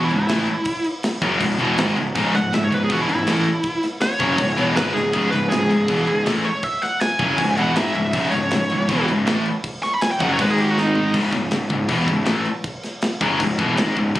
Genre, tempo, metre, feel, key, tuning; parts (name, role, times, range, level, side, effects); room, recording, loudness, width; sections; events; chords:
heavy metal; 160 BPM; 4/4; straight; C# minor; A4 = 439 Hz
high-gain lead guitar; melody; 0.0-11.1 s; D#4 to C#6; -22 LUFS; equal; distortion, ping-pong delay
high-gain distorted guitar; riff; 0.0-11.1 s; C#2 to A3; -27 LUFS; right 5 dB; distortion
scooped high-gain guitar; riff; 0.0-14.2 s; C#2 to A3; -23 LUFS; left 4 dB; distortion
sludgy distorted guitar; riff; 0.0-14.2 s; C#2 to A3; -25 LUFS; equal; overdrive
fuzz picked electric bass; bass; 0.0-14.2 s; C#1 to A1; -24 LUFS; equal; overdrive
tight metal drum kit; drums; 0.1-14.2 s; crash cymbal, kick drum, snare drum, toms; -26 LUFS; equal
light reverb; recorded on a phone in the room, club reverb, compression; -17 LUFS; side -15 dB against mid
0.0-11.1 A section; 11.1-14.2 B section
lead electric guitar solo 0.0-11.1; drum fill 5.0, 10.8-11.1
0.0 C#m; 10.4 G#5; 11.1 C#m